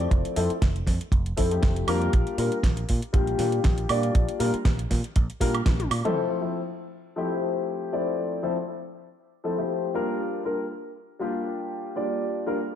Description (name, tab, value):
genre	nu-disco, nu disco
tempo	119 BPM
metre	4/4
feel	swing 54% on 16ths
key	F major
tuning	A4 = 441 Hz
part	dark grand piano	accompaniment	0.0-12.6 s	F3 to D5	-27 LUFS	left 3 dB	analog chorus, sidechain pumping, analog delay
part	picked electric bass	bass	0.0-6.0 s	F1 to Bb2	-27 LUFS	right 1 dB	tube saturation
part	pop drum kit	drums	0.0-6.3 s	crash cymbal, hi-hat, snare drum, toms, woodblock	-32 LUFS	right 2 dB	low-pass filter on hats, small room ambience, low-pass filter on snare, low-pass filter on perc, low-pass filter on toms, low-pass filter on cymbals
part	kick drum	drums	0.1-5.8 s	none	-23 LUFS	right 1 dB	small room ambience
room	moderate plate reverb, RT60 1.1 s, small room ambience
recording	dreamy mix soaked in reverb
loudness	-23 LUFS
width	side -10 dB against mid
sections	0.0-6.2 A section; 6.2-12.8 B section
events	drum fill 5.7-6.2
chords	0.0 Fmaj7; 2.1 Bb6; 6.2 Fmaj7